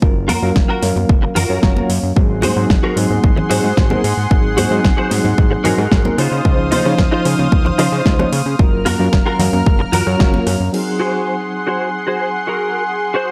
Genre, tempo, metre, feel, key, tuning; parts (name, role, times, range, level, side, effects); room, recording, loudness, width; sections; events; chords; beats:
nu-disco, nu disco; 112 BPM; 4/4; straight; Ab mixolydian; A4 = 440 Hz
reed electric piano; accompaniment; 0.0-13.3 s; F3 to F5; -23 LUFS; equal; fast tremolo, sidechain pumping, analog delay
fat analog bass; bass; 0.0-10.7 s; Gb1 to Db3; -22 LUFS; equal; transformer saturation
electronic kick drum; drums; 0.0-10.3 s; -16 LUFS; equal; overdrive
direct-recorded clean electric guitar; riff; 0.3-13.3 s; Eb4 to C5; -23 LUFS; equal; ensemble chorus, low-pass filter, analog delay
pop drum kit; drums; 0.3-10.8 s; crash cymbal, hi-hat, rim click, snare drum; -25 LUFS; equal; overdrive
congas; percussion; 0.3-10.4 s; -27 LUFS; equal
lush unison pad; sustained chords; 2.2-13.3 s; Ab4 to F6; -25 LUFS; equal; chorus, sidechain pumping
little or no reverb; dry, gritty hardware recording; -15 LUFS; mono
0.0-10.7 A section; 10.7-13.3 B section
band accent 10.2; filter sweep on clean electric guitar 10.7-13.3
0.0 Gbmaj7; 2.2 Ab7; 6.2 Dbmaj9; 8.6 Gbmaj7; 10.7 Ab7
| 0.02 0.56 1.09 1.63 | 2.17 2.70 3.24 3.77 | 4.31 4.84 5.38 5.92 | 6.45 6.99 7.52 8.06 | 8.60 9.13 9.67 10.20 | 10.74 11.27 11.81 12.35 | 12.88